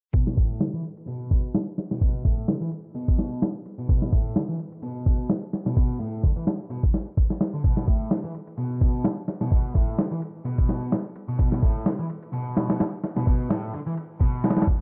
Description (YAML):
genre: breakbeat, breaks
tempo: 128 BPM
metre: 4/4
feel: swing 55% on 16ths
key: B minor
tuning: A4 = 441 Hz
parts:
  - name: distorted electric guitar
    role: riff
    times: 0.1-14.7 s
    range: A2 to E3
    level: -33 LUFS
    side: equal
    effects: distortion, vintage 12-bit sampler grit, low-pass filter
  - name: dusty soul sampler-style drum kit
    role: drums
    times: 0.1-14.8 s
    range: kick drum, ride cymbal, snare drum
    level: -25 LUFS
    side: equal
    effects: studio ambience
room: little or no reverb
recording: low-pass filter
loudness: -25 LUFS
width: mono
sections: 0.1-14.8 A section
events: filter sweep on distorted electric guitar 0.1-14.8; filter sweep 0.1-14.8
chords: none